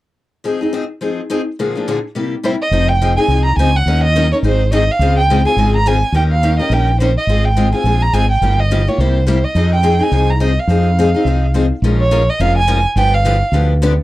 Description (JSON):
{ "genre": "acoustic string swing (jazz manouche)", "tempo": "211 BPM", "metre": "4/4", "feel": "swing 57% on 8ths", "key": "F minor", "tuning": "A4 = 440 Hz", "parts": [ { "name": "picked steel-string acoustic guitar", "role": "accompaniment", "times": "0.4-13.9 s", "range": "Bb2 to Bb4", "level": "-18 LUFS", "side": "left 3 dB", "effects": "none" }, { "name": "warm violin", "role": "melody", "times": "2.4-13.5 s", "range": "C5 to Bb5", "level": "-17 LUFS", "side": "right 2 dB", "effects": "none" }, { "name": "mellow fretless electric bass", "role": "bass", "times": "2.7-14.0 s", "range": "F1 to F2", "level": "-14 LUFS", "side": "equal", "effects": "none" } ], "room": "little or no reverb", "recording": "dry, close 1970s-style studio recording", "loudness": "-12 LUFS", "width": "side -16 dB against mid", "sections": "0.4-2.7 A section; 2.7-11.8 B section; 11.8-14.0 C section", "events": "none", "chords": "0.4 Fm7; 1.6 Bb7; 2.2 C7; 2.7 Fm7; 3.9 Ebm7; 4.4 Ab7; 5.0 Dbmaj7; 6.1 Eb7; 7.3 Ab6; 8.4 Gm7b5; 9.0 C7; 9.6 Fm7; 11.8 Bbm7; 13.0 G7" }